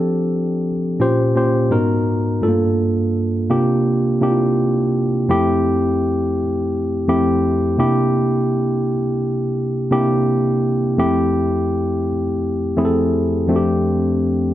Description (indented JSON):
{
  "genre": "soul",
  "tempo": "84 BPM",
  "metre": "4/4",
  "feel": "straight",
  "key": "F major",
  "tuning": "A4 = 439 Hz",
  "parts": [
    { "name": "tine electric piano", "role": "solo", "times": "0.0-14.5 s", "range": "F2 to C5", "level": "-16 LUFS", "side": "equal", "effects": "overdrive" }
  ],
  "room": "moderate echo chamber reverb, RT60 2.0 s, digital ambience",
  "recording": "dark, warm production",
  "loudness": "-16 LUFS",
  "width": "side -13 dB against mid",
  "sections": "0.0-5.3 A section; 5.3-14.5 B section",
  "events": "none",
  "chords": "0.0 F6; 1.0 Bbm6; 1.7 Abm9; 2.4 Gm9; 3.5 C9sus4; 5.3 Fmaj7; 7.8 C7; 11.0 Fmaj7; 13.5 F6",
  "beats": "0.29 1.00 1.72 | 2.44 3.15 3.87 4.58 | 5.29 6.01 6.72 7.43 | 8.15 8.86 9.57 10.28 | 11.00 11.71 12.42 13.13 | 13.84"
}